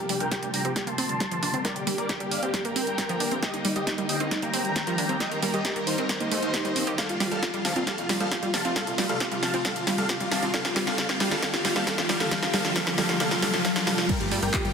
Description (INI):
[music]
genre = uplifting trance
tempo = 135 BPM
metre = 4/4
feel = straight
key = G minor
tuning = A4 = 440 Hz
[part]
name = big supersaw lead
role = melody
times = 0.0-14.7 s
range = Eb4 to C6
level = -29 LUFS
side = equal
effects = sidechain pumping, low-pass filter, ping-pong delay
[part]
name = fat analog bass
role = bass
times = 0.0-14.7 s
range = Eb1 to G2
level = -38 LUFS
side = left 1 dB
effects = none
[part]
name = wide unison pluck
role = arpeggios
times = 0.1-14.7 s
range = F3 to G4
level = -31 LUFS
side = right 2 dB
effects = sidechain pumping, ping-pong delay
[part]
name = techno drum kit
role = drums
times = 0.1-14.7 s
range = crash cymbal, handclaps, hi-hat, snare drum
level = -28 LUFS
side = equal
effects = high-pass filter on snare, high-pass filter on hats, high-pass filter on cymbals, high-pass filter on room
[part]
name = electronic kick drum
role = drums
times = 0.3-14.6 s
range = none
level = -34 LUFS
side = equal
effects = high-pass filter on kick, high-pass filter on room
[part]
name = riser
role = sound effects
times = 8.9-14.1 s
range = none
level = -34 LUFS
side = left 3 dB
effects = none
[sound]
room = wet recital hall reverb, RT60 1.5 s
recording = dense, heavily limited modern master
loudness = -23 LUFS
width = side -6 dB against mid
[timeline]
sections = 0.0-14.1 A section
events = build-up 0.0-14.1; drum fill 0.0-14.1; filter sweep on supersaw synth 0.0-14.1; riser 8.9-14.1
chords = 0.0 Gm; 3.4 Eb; 7.0 F; 8.8 Cm; 10.5 Gm; 12.3 F; 14.1 Gm